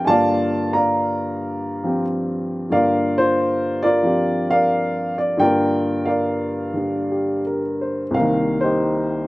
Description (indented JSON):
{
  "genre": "solo jazz",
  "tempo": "90 BPM",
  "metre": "4/4",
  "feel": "swing 69% on 8ths, rubato",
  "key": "G minor",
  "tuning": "A4 = 440 Hz",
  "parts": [
    { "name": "warm upright piano", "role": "solo", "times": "0.0-9.3 s", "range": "C2 to Bb5", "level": "-18 LUFS", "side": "equal", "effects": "slapback echo" }
  ],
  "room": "little or no reverb",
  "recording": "recorded outdoors, with no room sound",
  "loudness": "-18 LUFS",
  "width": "side -19 dB against mid",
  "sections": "0.0-9.3 A section",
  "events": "none",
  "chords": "0.0 Gm7; 8.1 Cm7"
}